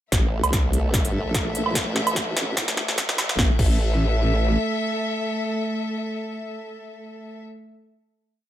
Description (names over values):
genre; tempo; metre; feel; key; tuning
heavy wobble dubstep; 147 BPM; 4/4; swing 54% on 16ths, half-time; A phrygian; A4 = 440 Hz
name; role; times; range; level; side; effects
warm chamber string section; sustained chords; 0.1-7.4 s; A3 to E5; -28 LUFS; equal; sidechain pumping
formant-sweep wobble bass; bass; 0.1-4.6 s; G1 to C2; -24 LUFS; equal; chorus, overdrive
big-room dance drum kit; drums; 0.1-3.7 s; crash cymbal, hi-hat, snare drum, woodblock; -24 LUFS; right 1 dB; high-pass filter on snare, high-pass filter on hats, high-pass filter on perc, high-pass filter on cymbals, high-pass filter on room
electronic kick drum; drums; 0.1-3.7 s; none; -24 LUFS; equal; none
room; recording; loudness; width
light reverb, digital ambience; high-pass filter; -20 LUFS; side -12 dB against mid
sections
0.1-3.4 build; 3.4-6.7 final chord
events
build-up 0.1-3.4; drum fill 0.1-3.4; filter sweep 0.1-3.4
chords
0.1 A5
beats
| 0.12 0.53 0.94 1.34 | 1.75 2.16 2.57 2.98 | 3.39 3.79 4.20 4.61 | 5.02 5.43 5.83 6.24